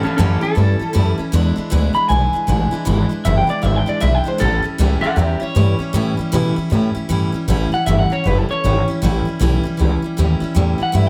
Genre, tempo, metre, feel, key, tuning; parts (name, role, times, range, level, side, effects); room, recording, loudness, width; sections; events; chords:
rockabilly; 156 BPM; 4/4; swing 62% on 8ths; A mixolydian; A4 = 440 Hz
electric guitar through a small old amp; melody; 0.0-11.1 s; C#4 to B5; -23 LUFS; equal; tape echo
picked steel-string acoustic guitar; accompaniment; 0.0-11.1 s; E2 to E4; -23 LUFS; equal
upright bass; bass; 0.0-11.1 s; F#1 to B2; -19 LUFS; equal
little or no reverb; -17 LUFS; mono
0.0-7.5 A section; 7.5-11.1 B section
clean electric guitar solo 0.0-7.5
0.0 A7; 1.3 E7; 4.4 A7